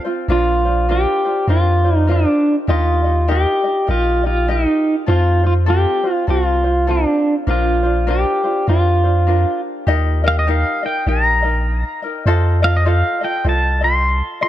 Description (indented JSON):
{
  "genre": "Hawaiian",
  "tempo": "100 BPM",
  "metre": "4/4",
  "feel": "swing 61% on 8ths",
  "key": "Bb major, Eb major from 9.9 s",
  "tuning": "A4 = 440 Hz",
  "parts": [
    { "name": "tenor ukulele", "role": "accompaniment", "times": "0.0-14.5 s", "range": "C4 to Eb5", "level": "-22 LUFS", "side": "left 1 dB", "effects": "none" },
    { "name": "pedal steel guitar", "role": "melody", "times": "0.3-14.5 s", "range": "D4 to C6", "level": "-18 LUFS", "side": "equal", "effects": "tape echo" },
    { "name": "punchy sub bass", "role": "bass", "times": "0.3-14.2 s", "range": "Bb1 to F2", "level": "-16 LUFS", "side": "equal", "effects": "none" }
  ],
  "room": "light reverb",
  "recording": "none",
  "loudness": "-14 LUFS",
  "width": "side -12 dB against mid",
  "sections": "0.3-9.9 A section; 9.9-14.5 B section",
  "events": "none",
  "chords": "0.3 Bbadd9; 2.7 Eb; 5.1 F; 7.5 Bbadd9; 9.9 Eb; 12.3 F7"
}